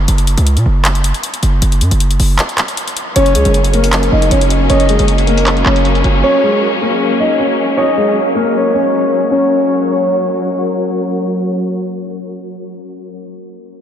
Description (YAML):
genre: hip hop, trap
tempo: 156 BPM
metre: 4/4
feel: half-time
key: F# major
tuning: A4 = 439 Hz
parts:
  - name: distorted 808-style bass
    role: bass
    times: 0.0-6.2 s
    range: F#1 to A#2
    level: -12 LUFS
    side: equal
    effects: distortion
  - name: trap drum kit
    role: drums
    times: 0.1-6.1 s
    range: handclaps, hi-hat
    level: -19 LUFS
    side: equal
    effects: none
  - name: dark concert grand piano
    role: melody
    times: 3.2-10.4 s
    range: G#3 to D#5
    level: -15 LUFS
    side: equal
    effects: ping-pong delay
  - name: breathy flute-like synth lead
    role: second line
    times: 3.2-10.4 s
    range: C#5 to D#5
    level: -19 LUFS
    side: left 2 dB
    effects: chorus, ping-pong delay
  - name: clear symphonic string section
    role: sustained chords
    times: 3.2-13.1 s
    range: F#3 to C#5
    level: -19 LUFS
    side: left 1 dB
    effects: none
room: wet huge ambient reverb, RT60 8.3 s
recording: dreamy mix soaked in reverb, low-pass filter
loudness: -11 LUFS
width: side -9 dB against mid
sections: 0.0-3.2 A section; 3.2-9.3 B section; 9.3-12.4 C section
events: break 0.0-3.2; filter sweep 3.2-9.3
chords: 0.1 N.C.; 3.2 F#